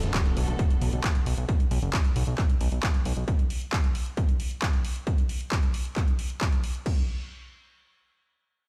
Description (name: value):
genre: uplifting trance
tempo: 134 BPM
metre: 4/4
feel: straight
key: B minor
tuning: A4 = 440 Hz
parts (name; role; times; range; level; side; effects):
- dark symphonic string section; sustained chords; 0.0-1.5 s; D3 to A4; -40 LUFS; equal; sidechain pumping
- fat analog bass; bass; 0.0-3.2 s; F#1 to B1; -30 LUFS; equal; sidechain pumping
- techno drum kit; drums; 0.0-6.9 s; crash cymbal, handclaps, hi-hat; -37 LUFS; equal; overdrive
- impact; sound effects; 0.0-1.5 s; none; -40 LUFS; equal; none
- electronic kick drum; drums; 0.1-6.9 s; none; -28 LUFS; equal; overdrive
room: little or no reverb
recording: played on a big sound system in a bare room, stone room reverb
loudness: -27 LUFS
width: mono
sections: 0.0-6.9 A section; 6.9-8.7 B section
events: impact 0.0-1.5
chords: 0.0 Bm7; 3.3 N.C.